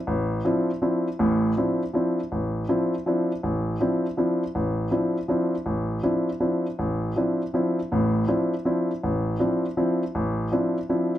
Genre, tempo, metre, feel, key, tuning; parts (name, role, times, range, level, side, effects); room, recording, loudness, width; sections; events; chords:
jazz; 161 BPM; 3/4; swing 64% on 8ths; D minor; A4 = 441 Hz
warm grand piano; solo; 0.1-11.1 s; A1 to E4; -22 LUFS; equal
light reverb; -22 LUFS; side -12 dB against mid
0.0-11.2 A section
0.0 Dm9